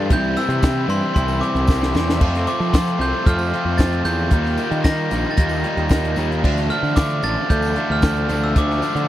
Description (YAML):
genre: indie rock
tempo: 114 BPM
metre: 4/4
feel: straight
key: D minor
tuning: A4 = 441 Hz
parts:
  - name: glockenspiel with hard plastic mallets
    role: melody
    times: 0.0-9.1 s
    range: C6 to Bb6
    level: -24 LUFS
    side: equal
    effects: tape echo
  - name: mellow tonewheel organ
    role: sustained chords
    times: 0.0-9.1 s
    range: E3 to A5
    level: -32 LUFS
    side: equal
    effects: none
  - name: distorted electric guitar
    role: riff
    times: 0.0-9.1 s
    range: C3 to F4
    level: -23 LUFS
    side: left 1 dB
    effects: overdrive
  - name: fuzz picked electric bass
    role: bass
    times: 0.0-9.1 s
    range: A1 to F3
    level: -22 LUFS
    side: equal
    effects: overdrive
  - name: compact cocktail drum kit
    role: drums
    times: 0.1-9.1 s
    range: crash cymbal, hi-hat, kick drum, snare drum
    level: -17 LUFS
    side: equal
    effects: none
  - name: tambourine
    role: percussion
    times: 0.2-9.0 s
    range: none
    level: -43 LUFS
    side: right 4 dB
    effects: none
room: little or no reverb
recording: dry, close 1970s-style studio recording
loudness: -16 LUFS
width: side -13 dB against mid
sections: 0.0-9.1 A section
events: drum fill 1.7-2.2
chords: 0.1 C; 2.2 F; 4.3 Ebadd9; 6.4 Dmadd9; 8.6 Dm7